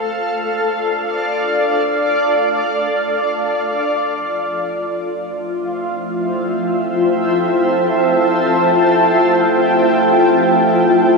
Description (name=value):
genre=ambient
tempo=free time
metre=none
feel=none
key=F major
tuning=A4 = 440 Hz
part: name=granular cloud pad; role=sustained chords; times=0.0-11.2 s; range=F4 to A5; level=-14 LUFS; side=equal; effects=built-in reverb, lush chorus
part: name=analog drone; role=drone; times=5.2-11.2 s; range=A3 to E4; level=-20 LUFS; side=right 1 dB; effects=chorus
room=wet lush hall reverb, RT60 2.9 s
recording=dreamy mix soaked in reverb, cassette tape, studio reverb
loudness=-14 LUFS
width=side -3 dB against mid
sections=0.0-3.9 A section; 3.9-11.2 B section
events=none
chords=0.0 Dm; 3.9 Fmaj7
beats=free time